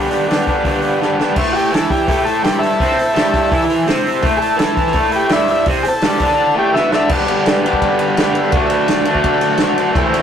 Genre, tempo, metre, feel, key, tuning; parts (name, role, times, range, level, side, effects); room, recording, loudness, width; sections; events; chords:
garage rock duo or trio; 167 BPM; 4/4; straight; A minor; A4 = 440 Hz
combo organ; sustained chords; 0.0-10.2 s; D4 to E5; -24 LUFS; left 1 dB
raw garage guitar; riff; 0.0-10.2 s; G2 to E4; -16 LUFS; equal; overdrive, spring reverb
vintage drum kit; drums; 0.1-10.2 s; crash cymbal, hi-hat, kick drum, ride cymbal, snare drum; -19 LUFS; right 1 dB
overdriven combo organ; melody; 1.5-7.1 s; E4 to A4; -17 LUFS; equal
moderate studio reverb, RT60 0.6 s; rough rehearsal-room recording, tube saturation; -13 LUFS; side -8 dB against mid
0.0-1.4 A section; 1.4-7.1 B section; 7.1-10.2 C section
drum fill 1.0-1.4, 6.7-7.1; transistor combo organ fill 9.4-10.0
0.0 G; 1.4 Am; 7.1 G; 8.5 D